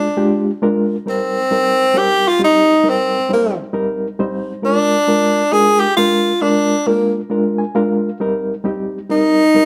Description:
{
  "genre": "soul",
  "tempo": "134 BPM",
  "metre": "4/4",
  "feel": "swing 62% on 8ths",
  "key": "Eb major",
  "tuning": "A4 = 440 Hz",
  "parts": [
    { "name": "breathy tenor saxophone", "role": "melody", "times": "0.0-9.7 s", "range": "Bb3 to Ab4", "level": "-16 LUFS", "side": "equal", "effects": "none" },
    { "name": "reed electric piano", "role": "accompaniment", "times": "0.0-9.7 s", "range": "G3 to Ab5", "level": "-20 LUFS", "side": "equal", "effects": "overdrive, fast tremolo" }
  ],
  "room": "wet studio reverb, RT60 0.9 s",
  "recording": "band playing live in one room",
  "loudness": "-16 LUFS",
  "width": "mono",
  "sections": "0.0-1.1 A section; 1.1-9.7 B section",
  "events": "tenor saxophone solo 1.1-9.7; reed electric piano fill 7.3-8.2",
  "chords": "0.0 Bb7; 1.1 Eb6; 4.6 Bb7; 8.2 Eb6"
}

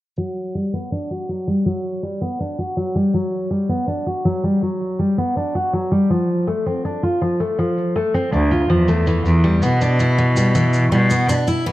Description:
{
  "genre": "folktronica",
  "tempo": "81 BPM",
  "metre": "4/4",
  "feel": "straight",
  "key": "G major",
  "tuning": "A4 = 441 Hz",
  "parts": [
    { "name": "picked steel-string acoustic guitar", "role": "arpeggios", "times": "0.2-11.7 s", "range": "E3 to F#4", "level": "-18 LUFS", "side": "equal", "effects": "low-pass filter" },
    { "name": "shaker", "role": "drums", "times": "0.2-11.6 s", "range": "none", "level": "-36 LUFS", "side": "equal", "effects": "none" },
    { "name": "clear cello", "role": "bass", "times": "8.3-11.3 s", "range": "D2 to B2", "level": "-16 LUFS", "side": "equal", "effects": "none" }
  ],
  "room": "light reverb, small room ambience",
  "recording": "low-pass filter",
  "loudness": "-17 LUFS",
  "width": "side -16 dB against mid",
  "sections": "0.2-11.7 A section",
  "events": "filter sweep on steel-string acoustic guitar 0.2-11.7; filter sweep 0.2-11.7; break 11.3-11.7",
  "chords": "0.2 Gmaj7(no3); 6.1 Dm; 9.1 Em7"
}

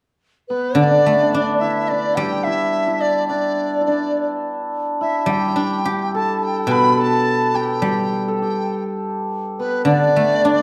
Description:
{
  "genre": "chinese traditional, Chinese chamber ensemble",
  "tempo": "105 BPM",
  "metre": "4/4",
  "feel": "rubato",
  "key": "G gong mode",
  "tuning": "A4 = 440 Hz",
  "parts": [
    { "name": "large dizi", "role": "melody", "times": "0.5-10.6 s", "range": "B4 to B5", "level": "-23 LUFS", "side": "equal", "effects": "none" },
    { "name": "hammered dulcimer", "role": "second line", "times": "0.5-10.6 s", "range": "B3 to B4", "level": "-23 LUFS", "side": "equal", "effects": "none" },
    { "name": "guzheng", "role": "accompaniment", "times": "0.7-10.6 s", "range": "B2 to G4", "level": "-24 LUFS", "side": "equal", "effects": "none" }
  ],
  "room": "wet recital hall reverb, RT60 1.5 s",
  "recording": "dark, warm production",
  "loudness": "-19 LUFS",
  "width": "mono",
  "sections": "0.0-10.6 A section",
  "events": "none",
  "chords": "none"
}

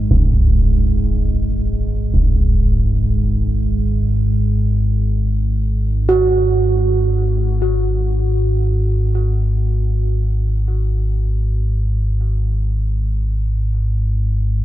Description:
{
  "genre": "dark ambient drone",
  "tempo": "free time",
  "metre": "none",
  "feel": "none",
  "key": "unclear",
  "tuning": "A4 = 440 Hz",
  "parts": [
    { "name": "gamelan-type bossed gongs", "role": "arpeggios", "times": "0.0-12.2 s", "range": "F#2 to F#4", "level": "-22 LUFS", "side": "right 2 dB", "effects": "ping-pong delay" },
    { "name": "deep rumbling drone", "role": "drone", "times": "0.0-14.6 s", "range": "G#1 to G#2", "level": "-16 LUFS", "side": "equal", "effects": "built-in reverb" },
    { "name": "concert bass drum", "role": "percussion", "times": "0.1-2.3 s", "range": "none", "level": "-17 LUFS", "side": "equal", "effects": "low-pass filter on kick" }
  ],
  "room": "light reverb, small room reverb",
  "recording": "dark, warm production",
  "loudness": "-15 LUFS",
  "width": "side -14 dB against mid",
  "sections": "0.0-14.6 A section",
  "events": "fade-in on synth drone 0.0-14.6",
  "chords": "0.1 F#sus2/G#"
}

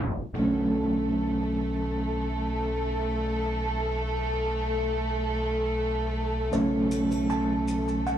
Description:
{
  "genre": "trip hop",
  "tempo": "78 BPM",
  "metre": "4/4",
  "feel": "straight",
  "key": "B minor",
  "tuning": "A4 = 440 Hz",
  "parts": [
    { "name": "dark studio violin section", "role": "sustained chords", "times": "0.0-8.2 s", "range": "A3 to A4", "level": "-30 LUFS", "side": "equal", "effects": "none" },
    { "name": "soft dub sub bass", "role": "bass", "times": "0.0-8.2 s", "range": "B1 to E2", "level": "-32 LUFS", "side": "right 1 dB", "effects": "none" },
    { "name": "maracas and triangle", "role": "percussion", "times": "0.2-0.3, 6.5-8.2 s", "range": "none", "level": "-46 LUFS", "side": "left 3 dB", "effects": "none" },
    { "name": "barky reed electric piano", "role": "accompaniment", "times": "0.4-8.2 s", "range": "C#3 to C#4", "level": "-28 LUFS", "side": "right 1 dB", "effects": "overdrive, tremolo, tape echo" },
    { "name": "music box", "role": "arpeggios", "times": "6.5-8.2 s", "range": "C#5 to A5", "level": "-33 LUFS", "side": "right 1 dB", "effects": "vintage 12-bit sampler grit, tape echo" }
  ],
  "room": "moderate plate reverb, RT60 2.5 s",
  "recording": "blown-out, overdriven recording, vinyl crackle, overdrive, tape stop",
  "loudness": "-25 LUFS",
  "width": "side -10 dB against mid",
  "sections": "0.4-8.2 A section",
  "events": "tape stop 0.0-0.4",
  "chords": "0.4 Bm9; 6.5 F#m/B"
}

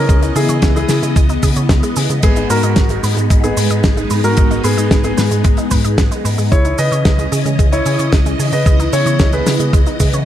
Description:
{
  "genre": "italo disco",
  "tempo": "112 BPM",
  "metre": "4/4",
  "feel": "straight",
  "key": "unclear",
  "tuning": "A4 = 441 Hz",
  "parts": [
    { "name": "dark concert grand piano", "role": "melody", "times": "0.0-9.7 s", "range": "B3 to D#5", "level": "-20 LUFS", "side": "left 1 dB", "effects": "tape echo" },
    { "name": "phased string machine", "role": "sustained chords", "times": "0.0-10.2 s", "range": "E3 to D#5", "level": "-20 LUFS", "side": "left 1 dB", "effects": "ensemble chorus, phaser" },
    { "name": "analog pluck", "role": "arpeggios", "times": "0.0-10.2 s", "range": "G#3 to D#5", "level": "-25 LUFS", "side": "right 5 dB", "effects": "chorus, tape echo" },
    { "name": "hollow-body short-scale picked electric bass", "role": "bass", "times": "0.0-10.2 s", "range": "G#1 to C#3", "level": "-17 LUFS", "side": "equal", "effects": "none" },
    { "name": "damped 70s drum kit", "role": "drums", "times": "0.1-10.2 s", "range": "cabasa, crash cymbal, hi-hat, snare drum", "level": "-20 LUFS", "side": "left 1 dB", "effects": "small room ambience" },
    { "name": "electronic kick drum", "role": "drums", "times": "0.1-10.1 s", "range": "none", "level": "-14 LUFS", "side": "equal", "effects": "small room ambience" }
  ],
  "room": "light reverb, studio reverb",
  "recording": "dark, warm production",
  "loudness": "-11 LUFS",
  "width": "side -11 dB against mid",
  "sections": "0.0-10.2 A section",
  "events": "none",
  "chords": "0.0 C#madd9; 2.2 G#m; 6.5 C#madd9"
}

